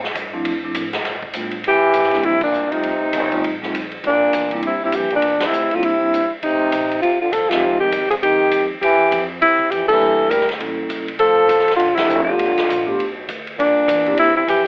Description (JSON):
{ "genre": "jazz, small-group swing and bop", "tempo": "201 BPM", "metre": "4/4", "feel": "swing 61% on 8ths", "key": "C mixolydian", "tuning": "A4 = 442 Hz", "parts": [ { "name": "upright bass", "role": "bass", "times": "0.0-14.7 s", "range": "D1 to A2", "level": "-32 LUFS", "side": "equal", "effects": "none" }, { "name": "swinging big-band drum kit", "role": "drums", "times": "0.0-14.6 s", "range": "crash cymbal, hi-hat, kick drum, ride cymbal, snare drum", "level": "-26 LUFS", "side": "equal", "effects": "none" }, { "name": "vibraphone with soft mallets", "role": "accompaniment", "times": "0.3-14.2 s", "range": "F3 to A4", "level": "-24 LUFS", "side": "equal", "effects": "none" }, { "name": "breathy alto saxophone", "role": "melody", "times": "1.7-14.7 s", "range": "D4 to Bb4", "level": "-16 LUFS", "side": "equal", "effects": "none" }, { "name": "mellow trombone", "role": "second line", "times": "1.7-14.7 s", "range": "Bb2 to G3", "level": "-22 LUFS", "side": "equal", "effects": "none" } ], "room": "light reverb", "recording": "telephone sound", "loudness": "-15 LUFS", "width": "side -31 dB against mid", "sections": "0.0-1.6 A section; 1.6-14.7 B section", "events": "trombone solo 0.0-1.6; band accent 2.4, 5.4, 7.5, 9.9, 11.9", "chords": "0.4 Dm7; 1.0 G9; 1.6 C7; 2.8 F7; 4.0 C7; 6.4 F7; 7.6 Fm7; 8.8 C; 10.0 Em7b5; 10.6 A7b9; 11.2 Dm7; 12.4 G7; 13.6 C7" }